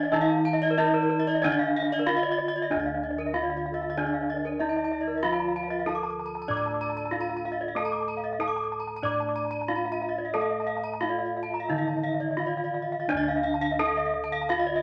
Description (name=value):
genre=Balinese gamelan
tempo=85-95 BPM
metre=4/4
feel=straight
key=D pelog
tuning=A4 = 442 Hz
part: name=gamelan-type bronze metallophone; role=melody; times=0.0-14.8 s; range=D4 to D5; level=-31 LUFS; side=equal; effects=none
part: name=gamelan-type bronze metallophone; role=accompaniment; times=0.0-13.1 s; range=D3 to D4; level=-40 LUFS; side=equal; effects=none
part: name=gamelan-type bronze metallophone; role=arpeggios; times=0.0-14.8 s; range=Bb4 to D6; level=-33 LUFS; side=equal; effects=none
part: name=gamelan-type bronze metallophone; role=arpeggios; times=0.0-14.7 s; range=Bb4 to D6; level=-36 LUFS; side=equal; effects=none
part: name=gamelan-type bossed gongs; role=bass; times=0.0-14.8 s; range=D2 to A4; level=-40 LUFS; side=equal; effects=none
part: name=xiao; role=second line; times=3.7-12.9 s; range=A4 to F5+33c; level=-41 LUFS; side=equal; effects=none
room=moderate studio reverb, RT60 0.7 s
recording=none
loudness=-28 LUFS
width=mono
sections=0.0-2.7 A section; 2.7-13.1 B section; 13.1-14.8 A section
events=none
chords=none